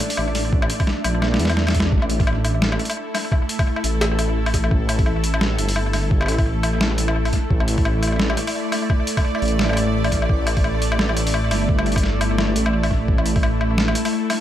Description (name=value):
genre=half-time drum and bass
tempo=172 BPM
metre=4/4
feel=swing 58% on 16ths, half-time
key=unclear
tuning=A4 = 441 Hz
part: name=bowed-like drone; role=sustained chords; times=0.0-14.4 s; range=A3 to D5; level=-25 LUFS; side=equal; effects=built-in reverb, sidechain pumping
part: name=boom bap sampler-style drum kit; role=drums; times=0.0-14.4 s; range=hi-hat, snare drum, woodblock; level=-23 LUFS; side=left 1 dB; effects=overdrive, small room ambience, analog delay
part: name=flickering grainy texture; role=texture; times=0.0-1.9 s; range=D4 to E5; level=-31 LUFS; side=equal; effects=built-in reverb
part: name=dark detuned saw bass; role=bass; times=0.2-13.9 s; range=G1 to E2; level=-21 LUFS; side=equal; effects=none
part: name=electronic kick drum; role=drums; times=0.5-13.4 s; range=none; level=-19 LUFS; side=equal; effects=overdrive, small room ambience
room=light reverb, digital ambience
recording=echo-heavy mix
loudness=-17 LUFS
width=side -11 dB against mid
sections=0.0-1.9 A section; 1.9-14.4 A section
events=drop 0.0-1.9, 1.9-14.4; drum fill 1.2-1.9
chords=0.0 A5